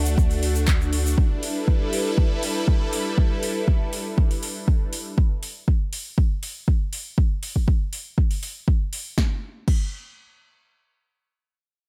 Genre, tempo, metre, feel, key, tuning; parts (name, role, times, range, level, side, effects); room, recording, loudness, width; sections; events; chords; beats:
progressive house; 120 BPM; 4/4; straight; A4 = 440 Hz
supersaw pad; sustained chords; 0.0-5.1 s; G3 to B4; -30 LUFS; equal; phaser, sidechain pumping
saturated sub bass; bass; 0.0-1.2 s; D2; -25 LUFS; equal; sidechain pumping
egg shaker; percussion; 0.1-1.2 s; -36 LUFS; equal
electronic kick drum; drums; 0.2-9.8 s; -22 LUFS; equal; overdrive
deep house drum kit; drums; 0.3-9.8 s; crash cymbal, handclaps, hi-hat, snare drum; -34 LUFS; equal; overdrive
digital ambience; -23 LUFS; mono
0.0-9.2 A section; 9.2-11.9 B section
0.0 D; 1.2 G6; 5.2 N.C.
0.18 0.68 | 1.18 1.68 2.18 2.68 | 3.18 3.68 4.18 4.68 | 5.18 5.68 6.18 6.68 | 7.18 7.68 8.18 8.68 | 9.18 9.68